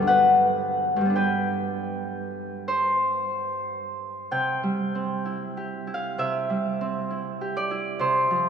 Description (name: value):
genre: classical, solo harp piece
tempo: 52-68 BPM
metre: 4/4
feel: rubato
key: C major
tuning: A4 = 440 Hz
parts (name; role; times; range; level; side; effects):
- Celtic harp; solo; 0.0-8.5 s; G2 to G5; -23 LUFS; equal; none
room: wet cathedral reverb, RT60 5.1 s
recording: heard from further back in the room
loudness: -23 LUFS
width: side -7 dB against mid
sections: 0.0-4.3 A section; 4.3-8.5 B section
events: none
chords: 0.1 G; 4.3 C